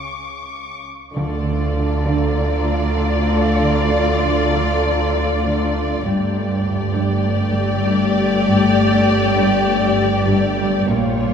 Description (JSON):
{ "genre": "cinematic, suspense film score", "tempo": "98 BPM", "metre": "4/4", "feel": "straight", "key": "D harmonic minor", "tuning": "A4 = 440 Hz", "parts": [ { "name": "muted symphonic violin section", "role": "texture", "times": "0.0-5.7 s", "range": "A5 to D6", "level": "-33 LUFS", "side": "left 3 dB", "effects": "none" }, { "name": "muted symphonic double bass section", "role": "bass", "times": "1.1-11.3 s", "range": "G1 to D2", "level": "-23 LUFS", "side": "right 2 dB", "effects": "none" }, { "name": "muted symphonic violin section", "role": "melody", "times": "1.2-11.3 s", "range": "Db5 to D5", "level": "-22 LUFS", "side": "left 3 dB", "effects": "none" }, { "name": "muted symphonic violin section", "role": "second line", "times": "1.2-11.3 s", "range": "F4 to G4", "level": "-24 LUFS", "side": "left 1 dB", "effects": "none" }, { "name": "muted symphonic viola section", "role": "accompaniment", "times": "1.2-11.3 s", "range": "A3 to Bb3", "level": "-23 LUFS", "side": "left 2 dB", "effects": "none" }, { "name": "muted symphonic cello section", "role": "riff", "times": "1.2-11.3 s", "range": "G2 to D4", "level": "-23 LUFS", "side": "equal", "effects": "none" }, { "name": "muted symphonic cello section", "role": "bass", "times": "1.2-11.3 s", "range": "G2 to D3", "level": "-23 LUFS", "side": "right 3 dB", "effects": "none" }, { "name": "timpani", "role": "percussion", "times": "1.2-2.0 s", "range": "D3", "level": "-30 LUFS", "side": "equal", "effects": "none" } ], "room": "wet cathedral reverb, RT60 6.2 s", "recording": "recorded in a church or concert hall", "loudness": "-15 LUFS", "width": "side -7 dB against mid", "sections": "0.0-1.2 A section; 1.2-11.3 A section", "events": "break 0.0-1.2", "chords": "0.0 N.C.; 1.2 Dm; 6.1 Gsus2" }